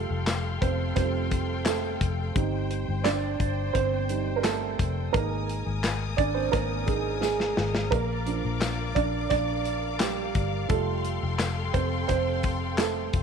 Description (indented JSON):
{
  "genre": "piano-driven pop",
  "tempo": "86 BPM",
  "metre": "4/4",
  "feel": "straight",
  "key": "unclear",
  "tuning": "A4 = 440 Hz",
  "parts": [
    { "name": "dark upright piano", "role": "accompaniment", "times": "0.0-13.2 s", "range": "F3 to D5", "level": "-28 LUFS", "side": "right 9 dB", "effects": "none" },
    { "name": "rich studio string section", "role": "sustained chords", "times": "0.0-13.2 s", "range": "A4 to Eb6", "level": "-35 LUFS", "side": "left 6 dB", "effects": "none" },
    { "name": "vintage muted fingered electric bass", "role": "bass", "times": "0.0-13.2 s", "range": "F1 to Bb1", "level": "-30 LUFS", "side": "left 3 dB", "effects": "none" },
    { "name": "modern studio drum kit", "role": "drums", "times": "0.3-13.2 s", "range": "handclaps, hi-hat, kick drum, snare drum", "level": "-29 LUFS", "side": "left 3 dB", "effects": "none" },
    { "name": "tambourine", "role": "percussion", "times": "0.3-13.0 s", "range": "none", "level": "-41 LUFS", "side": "left 16 dB", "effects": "none" }
  ],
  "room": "light reverb, studio ambience",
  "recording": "1960s-style stereo with parts hard left and right",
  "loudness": "-24 LUFS",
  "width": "side -6 dB against mid",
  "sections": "0.0-13.2 A section",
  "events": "upright piano solo 0.0-13.2; drum fill 7.2-7.9",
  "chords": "0.0 Fadd9; 2.4 Cm/G; 5.1 Absus2; 7.9 Bb; 10.7 Fadd9"
}